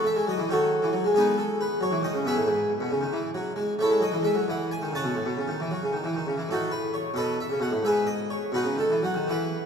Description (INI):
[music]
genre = classical, baroque-style suite movement for harpsichord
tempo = 90 BPM (dotted quarters)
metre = 12/8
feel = rubato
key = unclear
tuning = A4 = 439 Hz
[part]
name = harpsichord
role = solo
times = 0.0-9.7 s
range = G#2 to A5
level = -24 LUFS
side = equal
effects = none
[sound]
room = wet cathedral reverb, RT60 4.7 s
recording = minimal, uncompressed stereo recording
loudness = -24 LUFS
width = side -6 dB against mid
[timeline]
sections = 0.0-9.7 A section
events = none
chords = 0.0 F#m; 1.1 G#m; 2.5 E/G#; 3.8 A; 5.1 F#m/A; 7.8 G#madd11; 8.5 B